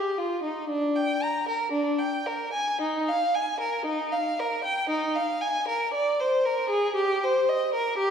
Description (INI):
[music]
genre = classical, baroque-style suite movement for unaccompanied violin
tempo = 58 BPM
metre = 4/4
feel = rubato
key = unclear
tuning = A4 = 439 Hz
[part]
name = rich violin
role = solo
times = 0.0-8.1 s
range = D4 to Bb5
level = -24 LUFS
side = equal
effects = none
[sound]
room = wet scoring stage reverb, RT60 1.9 s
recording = heard from further back in the room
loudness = -24 LUFS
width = side -7 dB against mid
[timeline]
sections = 0.0-8.1 A section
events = none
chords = none